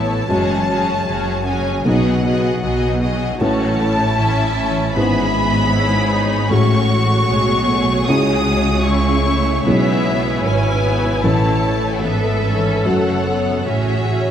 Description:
cinematic, emotional film score for orchestra; 76 BPM; 4/4; rubato; E major; A4 = 440 Hz
clear symphonic violin section; melody; 0.0-14.3 s; E5 to D#6; -22 LUFS; left 2 dB
rich symphonic violin section; second line; 0.0-14.3 s; E4 to E5; -24 LUFS; left 1 dB
felt-muted upright piano; accompaniment; 0.0-14.3 s; A1 to B4; -21 LUFS; equal
rich symphonic viola section; accompaniment; 0.0-14.3 s; G#3 to A4; -23 LUFS; right 1 dB
concert harp; arpeggios; 0.0-14.3 s; F#2 to F#4; -24 LUFS; left 4 dB
rich symphonic cello section; bass; 0.0-14.3 s; F#2 to C#3; -23 LUFS; right 2 dB
warm symphonic double bass section; bass; 0.0-14.3 s; F#1 to C#2; -24 LUFS; right 2 dB
wet scoring stage reverb, RT60 1.6 s; -14 LUFS; side -9 dB against mid
0.0-14.3 A section
0.3 F#madd9; 1.9 B6; 3.4 Aadd9; 5.0 E6/G#; 6.5 F#madd9/A; 8.1 C#m; 9.7 E6/B; 11.2 Aadd9; 12.8 F#madd9

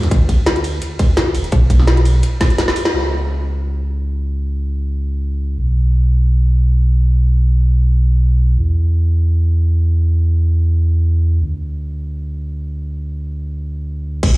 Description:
liquid drum and bass; free time; A4 = 440 Hz
sub bass with octave; bass; 0.0-14.4 s; D1 to E2; -14 LUFS; equal
drum and bass drum kit; drums; 0.0-2.9, 14.2-14.3 s; crash cymbal, hi-hat, ride cymbal, snare drum; -19 LUFS; equal
electronic kick drum; drums; 0.1-2.5, 14.2-14.3 s; -13 LUFS; equal
light reverb; played on a big sound system in a bare room, large studio reverb; -14 LUFS; side -20 dB against mid
0.0-2.9 A section; 2.9-14.2 B section
drop 0.0-2.9; drum fill 2.4-2.9; band accent 2.8

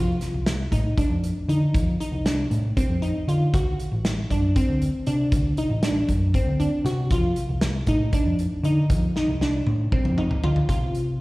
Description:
progressive instrumental, band music in an uneven meter; 235 BPM (eighths); 7/8; straight; A4 = 440 Hz
glassy wavetable pluck; arpeggios; 0.0-11.0 s; C4 to F#4; -26 LUFS; equal; chorus, slapback echo
hollow-body short-scale picked electric bass; bass; 0.0-11.2 s; A1 to D3; -24 LUFS; equal
loose indie drum kit; drums; 0.2-11.1 s; hi-hat, kick drum, snare drum, toms; -24 LUFS; equal
light reverb, small room ambience; live gig heard through the venue's PA, recital hall reverb; -20 LUFS; side -20 dB against mid
0.0-10.7 A section
drum fill 9.2-10.7
0.0 F5; 3.5 D; 7.1 F5; 10.7 N.C.

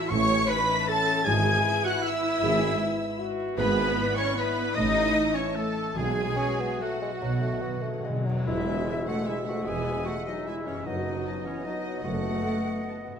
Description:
classical, orchestral ballroom waltz; 137-165 BPM; 3/4; rubato; E major; A4 = 439 Hz
warm symphonic violin section; melody; 0.0-13.0 s; F#5 to C#7; -34 LUFS; equal
clear oboe; second line; 0.0-13.2 s; F#4 to C#6; -35 LUFS; right 2 dB
clear symphonic violin section; second line; 0.0-13.0 s; F#4 to C#6; -37 LUFS; equal
dark clarinet; second line; 0.0-13.1 s; C#4 to C#6; -34 LUFS; left 2 dB
warm symphonic viola section; accompaniment; 0.0-13.1 s; E3 to C#5; -32 LUFS; right 2 dB
warm French horn section; sustained chords; 0.0-13.1 s; E3 to G#4; -35 LUFS; left 3 dB
concert harp; arpeggios; 0.0-13.2 s; E2 to B5; -38 LUFS; left 9 dB
bright silver concert flute; second line; 0.1-13.1 s; F#4 to C#6; -34 LUFS; left 1 dB
dark symphonic cello section; bass; 0.1-12.4 s; E2 to B2; -34 LUFS; right 1 dB
warm symphonic double bass section; bass; 0.1-12.4 s; E1 to B1; -36 LUFS; right 3 dB
warm tuba; bass; 0.1-12.4 s; E1 to B1; -36 LUFS; right 4 dB
cymbal swell and tam-tam; percussion; 6.0-10.0 s; -39 LUFS; left 3 dB
timpani; percussion; 6.0-9.0 s; E2 to B2; -34 LUFS; left 1 dB
mellow bassoon; accompaniment; 6.4-13.2 s; F#3 to C#4; -35 LUFS; right 2 dB
moderate scoring stage reverb, RT60 1.7 s; -24 LUFS; side -7 dB against mid
0.0-8.5 A section; 8.5-13.2 B section
timpani fill 7.2-8.5; band accent 8.5-8.9
0.0 A; 1.3 E/G#; 3.6 E7/G#; 4.8 A; 6.0 Bsus4; 7.2 B; 8.5 E; 10.9 B7/F#

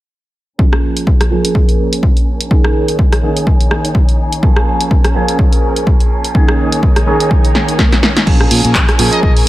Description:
filtered disco house; 125 BPM; 4/4; swing 57% on 16ths; Bb minor; A4 = 443 Hz
warm baby grand piano; accompaniment; 0.6-9.5 s; Eb3 to Ab4; -17 LUFS; right 2 dB; phaser, sidechain pumping, low-pass filter
rich studio string section; sustained chords; 0.6-9.5 s; Db4 to Ab5; -23 LUFS; left 1 dB; sidechain pumping, low-pass filter
electronic kick drum; drums; 0.6-9.3 s; -12 LUFS; equal
punchy analog drum machine; drums; 0.7-9.4 s; crash cymbal, handclaps, hi-hat, rim click, snare drum; -17 LUFS; equal; sidechain pumping on hats, sidechain pumping on cymbals
swell; sound effects; 7.5-8.3 s; -24 LUFS; right 1 dB
fingered electric bass; bass; 8.3-9.4 s; Bb1 to Bb2; -15 LUFS; equal; sidechain pumping, low-pass filter
muted trumpet section; melody; 9.1-9.3 s; Eb5; -20 LUFS; left 1 dB; sidechain pumping, low-pass filter
little or no reverb; -10 LUFS; side -16 dB against mid
0.6-8.3 A section; 8.3-9.5 B section
filter sweep 0.6-8.3, 8.3-9.5; swell 7.5-8.3; drum fill 7.5-8.3
0.6 Bbm7; 2.5 Eb7sus4; 4.4 Bbm7; 6.3 Eb7sus4; 8.3 Bbm7

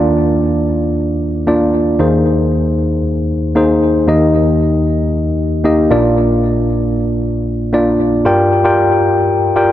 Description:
pop; 115 BPM; 4/4; straight; A4 = 441 Hz
tine electric piano; solo; 0.0-9.7 s; Bb1 to G5; -11 LUFS; equal; digital delay
light reverb; -11 LUFS; side -12 dB against mid
0.0-8.3 A section; 8.3-9.7 B section
0.0 Bb/Eb; 2.0 Abadd9/Eb; 4.1 Eb; 5.9 Bb; 8.3 Gm7

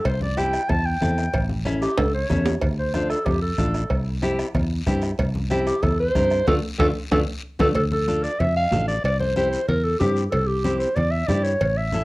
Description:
latin, cumbia; 187 BPM; 4/4; straight; A4 = 440 Hz
growling clarinet; melody; 0.0-12.0 s; G4 to A5; -23 LUFS; equal; cassette tape
bombo; percussion; 0.0-7.7 s; -28 LUFS; equal
fingered electric bass; bass; 0.1-12.0 s; A1 to G2; -24 LUFS; equal
cowbell and timbales; percussion; 0.1-11.8 s; -28 LUFS; right 3 dB
guiro; percussion; 0.1-12.0 s; -42 LUFS; left 4 dB
congas; percussion; 0.2-12.0 s; -30 LUFS; left 1 dB
nylon-string guitar; accompaniment; 0.4-12.0 s; A3 to Bb4; -27 LUFS; left 1 dB
wet studio reverb, RT60 0.5 s; home recording on cassette; -20 LUFS; side -21 dB against mid
0.0-7.8 A section; 7.8-12.0 B section
clarinet solo 0.0-7.8; drum fill 2.0-2.6, 6.5-7.8; band accent 6.5-7.8
0.0 C; 1.3 A; 2.6 Dm; 3.9 C; 6.5 Dm; 9.0 C

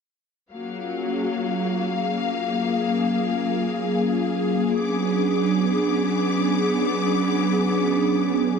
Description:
nu-disco; free time; F# major; A4 = 441 Hz
warm analog pad; accompaniment; 0.5-8.6 s; F#3 to G#4; -22 LUFS; right 1 dB; chorus, tape echo
clear symphonic string section; sustained chords; 0.5-8.6 s; F#3 to D6; -26 LUFS; left 4 dB; low-pass filter
wet spring reverb, RT60 2.5 s; echo-heavy mix; -20 LUFS; side -6 dB against mid
0.5-8.6 A section
filter sweep on analog synth pad 0.5-8.6
0.5 F#maj7; 4.8 Bm6

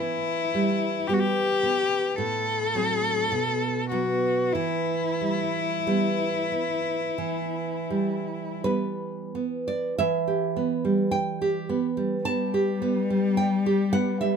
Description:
romantic duo for cello and classical guitar; 39-55 BPM; 4/4; rubato; E minor; A4 = 440 Hz
warm cello; melody; 0.0-14.4 s; G3 to A4; -26 LUFS; left 5 dB
nylon-string guitar; accompaniment; 0.0-14.4 s; A2 to A5; -26 LUFS; right 3 dB
moderate studio reverb, RT60 0.5 s; close, detailed microphones; -23 LUFS; side -6 dB against mid
0.0-10.0 A section; 10.0-14.4 B section
0.0 Em; 2.2 F#dim/A; 3.3 B5; 4.5 Em

